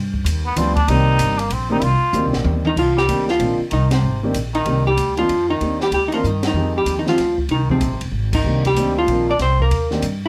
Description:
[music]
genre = jazz, small-group swing and bop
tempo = 190 BPM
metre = 3/4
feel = swing 63% on 8ths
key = C minor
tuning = A4 = 440 Hz
[part]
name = upright bass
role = bass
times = 0.0-10.3 s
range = F1 to G2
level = -23 LUFS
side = equal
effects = none
[part]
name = open jazz drum kit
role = drums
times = 0.1-10.1 s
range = crash cymbal, hi-hat, kick drum, ride cymbal, snare drum, toms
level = -30 LUFS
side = equal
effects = none
[part]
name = trombone with metal mute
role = second line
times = 0.5-10.3 s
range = C3 to F4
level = -27 LUFS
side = equal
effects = none
[part]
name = dark concert grand piano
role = accompaniment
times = 0.6-10.0 s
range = Eb3 to D5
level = -25 LUFS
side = equal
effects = none
[part]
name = vintage hollow-body jazz guitar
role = melody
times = 2.7-10.3 s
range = C4 to D5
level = -22 LUFS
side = equal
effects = none
[sound]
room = light reverb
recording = none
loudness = -18 LUFS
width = mono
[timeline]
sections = 0.0-2.8 A section; 2.8-10.3 B section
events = trombone solo 0.0-2.8; drum fill 2.1-2.8, 6.2-6.6; band accent 3.9, 6.4, 8.3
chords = 0.0 G7; 0.9 Cm9; 6.6 Fm9; 8.4 Cm9

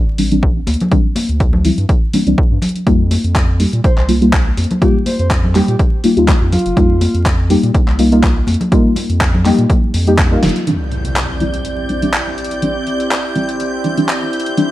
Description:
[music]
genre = deep house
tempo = 123 BPM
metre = 4/4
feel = swing 54% on 16ths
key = D minor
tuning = A4 = 440 Hz
[part]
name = deep mellow chord stab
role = stabs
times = 0.0-14.7 s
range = E3 to G4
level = -16 LUFS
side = left 1 dB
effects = chorus, sidechain pumping, analog delay
[part]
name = round analog bass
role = bass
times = 0.1-10.5 s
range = F1 to Bb2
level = -16 LUFS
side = equal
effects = none
[part]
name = deep house drum kit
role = drums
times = 0.2-14.7 s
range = handclaps, hi-hat, snare drum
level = -22 LUFS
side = equal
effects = none
[part]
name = electronic kick drum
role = drums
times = 0.4-10.3 s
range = none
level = -14 LUFS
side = equal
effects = none
[part]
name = congas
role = percussion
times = 0.7-10.5 s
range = none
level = -21 LUFS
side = left 1 dB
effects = sidechain pumping on perc
[part]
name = breathy flute-like synth lead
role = melody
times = 3.8-7.2 s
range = F4 to C5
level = -23 LUFS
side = equal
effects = chorus, analog delay
[part]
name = airy breathy pad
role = sustained chords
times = 10.7-14.7 s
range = C4 to E5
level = -21 LUFS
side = right 1 dB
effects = chorus, sidechain pumping
[part]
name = impact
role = sound effects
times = 10.7-12.6 s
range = none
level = -24 LUFS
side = equal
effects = none
[part]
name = string machine, violins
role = texture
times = 10.7-14.7 s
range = G6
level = -25 LUFS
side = left 1 dB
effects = ensemble chorus, sidechain pumping
[sound]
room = light reverb, digital ambience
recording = vinyl crackle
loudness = -12 LUFS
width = side -15 dB against mid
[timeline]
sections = 0.0-10.7 A section; 10.7-14.7 B section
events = filter sweep on synth stab 0.0-10.7; drum fill 10.4; band accent 10.4; impact 10.7-12.6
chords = 0.0 D9sus4; 2.6 F9sus4; 10.7 D9sus4

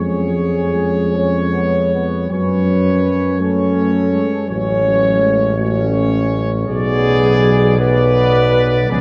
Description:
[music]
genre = classical, hymn-like piece for brass band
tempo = 55 BPM (dotted quarters)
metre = 6/8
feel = uneven beats, rubato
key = F# minor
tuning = A4 = 441 Hz
[part]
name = bright trumpet section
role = melody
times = 0.0-9.0 s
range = C#5 to D5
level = -26 LUFS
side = equal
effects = none
[part]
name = warm French horn section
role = second line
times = 0.0-9.0 s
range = F#4 to C#5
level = -21 LUFS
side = equal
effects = none
[part]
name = dark euphonium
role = accompaniment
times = 0.0-9.0 s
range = E#3 to A3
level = -26 LUFS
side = equal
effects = none
[part]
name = warm trombone section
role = accompaniment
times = 0.0-9.0 s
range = B3 to C#4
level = -25 LUFS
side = equal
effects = none
[part]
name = warm tuba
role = bass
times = 0.0-9.0 s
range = A1 to F#2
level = -20 LUFS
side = equal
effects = none
[sound]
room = wet cathedral reverb, RT60 5.7 s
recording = dark, warm production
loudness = -15 LUFS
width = mono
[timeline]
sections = 0.0-9.0 A section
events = none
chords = 0.0 C#/E#; 2.3 F#m; 4.5 F#m/A; 6.7 G#m7b5/B

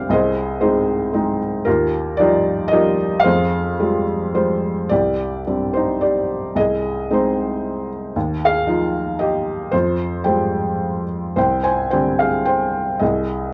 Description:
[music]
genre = classical, lyrical solo piano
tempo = 111 BPM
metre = 3/4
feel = uneven beats, rubato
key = F dorian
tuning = A4 = 440 Hz
[part]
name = felt-muted upright piano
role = solo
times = 0.0-13.5 s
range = C2 to Ab5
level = -19 LUFS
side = equal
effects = none
[sound]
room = moderate small room ambience, RT60 0.5 s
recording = worn, warbling old tape, cassette tape, warbly pitch drift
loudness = -19 LUFS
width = mono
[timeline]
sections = 0.0-4.9 A section; 4.9-13.5 A section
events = felt piano fill 4.1-4.9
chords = 0.1 Ab/C; 1.7 Ebadd9; 3.3 Fmadd9; 4.9 Csus2; 6.6 Ab/C; 8.2 Ebadd9; 9.7 Fmadd9; 11.4 Csus2; 13.0 Ab/C

